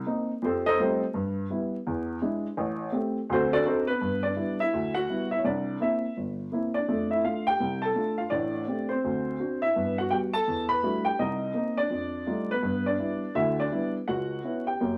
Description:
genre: solo jazz.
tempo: 167 BPM.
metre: 4/4.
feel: swing 64% on 8ths.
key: G major.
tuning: A4 = 440 Hz.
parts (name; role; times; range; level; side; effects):
dark upright piano; solo; 0.1-15.0 s; G1 to B5; -28 LUFS; equal; none.
room: moderate studio reverb, RT60 0.7 s.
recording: vinyl crackle.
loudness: -28 LUFS.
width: mono.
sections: 0.0-4.0 A section; 4.0-15.0 B section.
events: upright piano solo 0.0-4.0.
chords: 0.4 F9; 1.1 G6; 1.9 E7; 2.6 Am7; 3.3 D7b9; 4.0 G6; 5.4 C7; 6.9 F6; 8.3 Am7; 9.0 D7; 9.8 Gmaj7; 10.5 Em11; 11.2 Cm7; 11.9 F9; 12.6 G6; 14.1 C#m7b5.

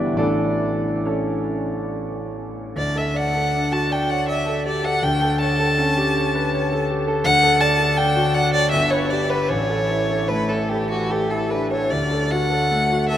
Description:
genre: classical, romantic duo for violin and grand piano.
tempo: 67-84 BPM.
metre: 3/4.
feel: rubato.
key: D major.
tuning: A4 = 438 Hz.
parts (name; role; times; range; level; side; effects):
clear concert grand piano; accompaniment; 0.0-13.2 s; G1 to E5; -21 LUFS; equal; none.
rich violin; melody; 2.8-13.2 s; F#4 to A5; -20 LUFS; left 1 dB; none.
room: wet huge ambient reverb, RT60 8.2 s.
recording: in a vast, echoing space.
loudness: -18 LUFS.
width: side -11 dB against mid.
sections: 0.0-2.8 A section; 2.8-13.2 B section.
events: none.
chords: 0.2 A; 2.8 D; 5.0 A7/D; 7.2 D; 8.7 G; 9.5 A; 11.9 D.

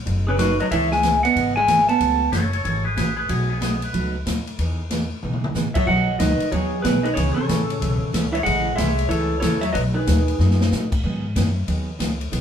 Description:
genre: country, western swing.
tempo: 186 BPM.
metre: 4/4.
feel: swing 64% on 8ths.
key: unclear.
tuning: A4 = 440 Hz.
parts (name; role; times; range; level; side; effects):
picked steel-string acoustic guitar; accompaniment; 0.1-12.4 s; B2 to G#4; -27 LUFS; right 3 dB; none.
upright bass; bass; 0.1-12.4 s; F#1 to A2; -24 LUFS; left 1 dB; none.
swinging big-band drum kit; drums; 0.1-12.4 s; crash cymbal, hi-hat, kick drum, ride cymbal, snare drum, toms; -27 LUFS; left 2 dB; none.
clean lap steel guitar; melody; 0.3-2.3, 5.7-10.9 s; F#4 to A5; -21 LUFS; equal; none.
vintage hollow-body jazz guitar; second line; 0.3-2.3, 5.8-10.9 s; B2 to B3; -25 LUFS; right 3 dB; none.
pedal steel guitar; second line; 2.3-4.1 s; B3 to C#5; -26 LUFS; left 1 dB; none.
room: moderate studio reverb, RT60 0.6 s.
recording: band playing live in one room.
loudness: -18 LUFS.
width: side -8 dB against mid.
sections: 0.0-5.9 A section; 5.9-12.4 B section.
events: drum fill 5.2-5.6, 10.4-10.7.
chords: 0.0 B7; 0.7 C#m9; 2.0 F#m11; 3.3 B9; 4.6 Emaj7; 5.9 G#m7; 7.2 C#m7; 8.5 Amaj7#11; 9.7 B7; 11.0 G#m7.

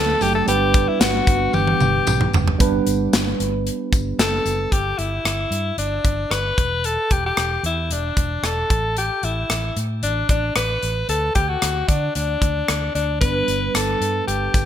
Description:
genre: 1980s-style pop.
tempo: 113 BPM.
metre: 4/4.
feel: straight.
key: G major.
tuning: A4 = 441 Hz.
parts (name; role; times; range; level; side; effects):
edgy alto saxophone; melody; 0.0-14.7 s; D4 to B4; -22 LUFS; left 2 dB; ping-pong delay.
tine electric piano; accompaniment; 0.0-4.7, 13.2-14.7 s; F#3 to B4; -23 LUFS; right 5 dB; lush chorus.
vintage muted fingered electric bass; bass; 0.0-14.7 s; E1 to D3; -25 LUFS; equal; none.
modern studio drum kit; drums; 0.2-14.7 s; hi-hat, kick drum, rim click, snare drum, tambourine, toms; -21 LUFS; equal; gated reverb.
tambourine; percussion; 0.2-4.6, 13.2-14.7 s; none; -34 LUFS; left 9 dB; none.
room: moderate plate reverb, RT60 1.3 s, small room ambience.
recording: bright 1980s-style digital production.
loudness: -18 LUFS.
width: side -10 dB against mid.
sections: 0.0-2.6 A section; 2.6-4.7 B section; 4.7-14.7 C section.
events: drum fill 1.5-2.6.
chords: 0.5 G; 4.7 G5; 6.6 Emadd11; 8.7 A5; 11.1 N.C.; 13.2 G.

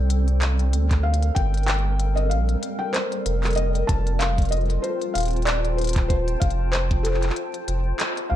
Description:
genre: IDM.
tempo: 95 BPM.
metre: 4/4.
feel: swing 56% on 16ths.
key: unclear.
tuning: A4 = 440 Hz.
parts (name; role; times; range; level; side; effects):
felt-muted upright piano; melody; 0.0-8.4 s; A4 to A5; -29 LUFS; left 2 dB; ping-pong delay.
granular cloud pad; sustained chords; 0.0-8.4 s; G3 to A5; -29 LUFS; left 1 dB; built-in reverb.
warm sub bass; bass; 0.0-8.4 s; Eb1 to D2; -22 LUFS; equal; tube saturation.
industrial drum kit; drums; 0.1-8.3 s; handclaps, hi-hat; -29 LUFS; equal; studio reverb.
electronic kick drum; drums; 0.9-7.0 s; none; -22 LUFS; equal; studio reverb.
room: light reverb, digital ambience.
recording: dark, warm production.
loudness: -20 LUFS.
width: side -12 dB against mid.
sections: 0.0-8.4 A section.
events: band accent 8.0-8.3.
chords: 0.0 Gm7; 3.6 F7.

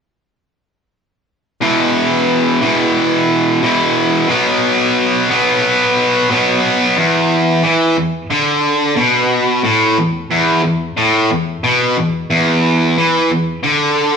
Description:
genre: rock.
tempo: 90 BPM.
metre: 4/4.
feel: straight.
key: unclear.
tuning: A4 = 439 Hz.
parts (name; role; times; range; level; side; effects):
overdriven electric guitar; solo; 1.6-14.2 s; E2 to B3; -12 LUFS; equal; none.
room: wet large studio reverb, RT60 1.2 s.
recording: band playing live in one room.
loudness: -12 LUFS.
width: side -6 dB against mid.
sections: 1.6-7.0 A section; 7.0-14.2 B section.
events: none.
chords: 1.6 E5; 4.3 B5; 7.0 E5.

